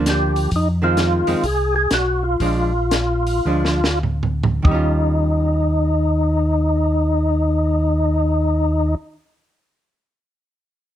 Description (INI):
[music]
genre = soul jazz organ trio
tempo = 93-133 BPM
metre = 4/4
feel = swing 66% on 8ths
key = Eb mixolydian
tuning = A4 = 438 Hz
[part]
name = archtop guitar, miked and amplified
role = accompaniment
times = 0.0-9.1 s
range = Eb3 to F4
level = -23 LUFS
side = right 4 dB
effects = none
[part]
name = mellow tonewheel organ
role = bass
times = 0.0-9.0 s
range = Bb1 to F2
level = -20 LUFS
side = equal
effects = slow rotary speaker
[part]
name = overdriven tonewheel organ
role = melody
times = 0.1-8.9 s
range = Eb4 to Ab4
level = -20 LUFS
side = left 1 dB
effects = slow rotary speaker, chorus vibrato
[part]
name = compact cocktail drum kit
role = drums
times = 0.1-4.8 s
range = hi-hat, kick drum, snare drum, toms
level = -21 LUFS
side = equal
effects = none
[sound]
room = light reverb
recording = close, detailed microphones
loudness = -16 LUFS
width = side -11 dB against mid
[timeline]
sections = 0.0-4.6 A section; 4.6-9.8 B section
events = slowing down 0.5-4.6; drum fill 3.5-4.6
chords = 0.0 Gm7; 0.5 Fm7; 2.4 Bb7; 4.6 Eb9